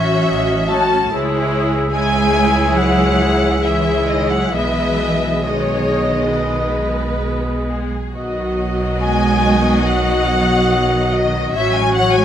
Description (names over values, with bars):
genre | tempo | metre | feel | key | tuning
cinematic | 65-74 BPM | 4/4 | rubato | C# minor | A4 = 439 Hz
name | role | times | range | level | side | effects
warm symphonic violin section | melody | 0.0-12.2 s | D#5 to A5 | -22 LUFS | left 4 dB | none
concert flute | second line | 0.0-12.2 s | D#5 to A5 | -23 LUFS | left 2 dB | none
dark clarinet | second line | 0.0-12.2 s | F#4 to G#4 | -27 LUFS | left 2 dB | none
dark symphonic violin section | second line | 0.0-12.2 s | F#4 to D#5 | -24 LUFS | left 3 dB | none
warm oboe | second line | 0.0-12.2 s | C#5 to E5 | -26 LUFS | right 2 dB | none
clear symphonic viola section | accompaniment | 0.0-12.2 s | F#3 to F#4 | -22 LUFS | equal | none
mellow French horn section | sustained chords | 0.0-12.2 s | B2 to G#4 | -24 LUFS | left 2 dB | none
dark symphonic cello section | bass | 0.0-12.2 s | D#3 to A3 | -22 LUFS | right 3 dB | none
warm studio double bass section | bass | 0.0-12.2 s | A1 to C#2 | -22 LUFS | right 2 dB | none
room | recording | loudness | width
moderate concert hall reverb, RT60 1.8 s | close, detailed microphones | -14 LUFS | side -10 dB against mid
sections
0.0-12.2 A section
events
none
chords
0.0 F#m7/A; 1.1 C#m; 4.5 G#m/B; 8.2 B; 11.6 F#m7/A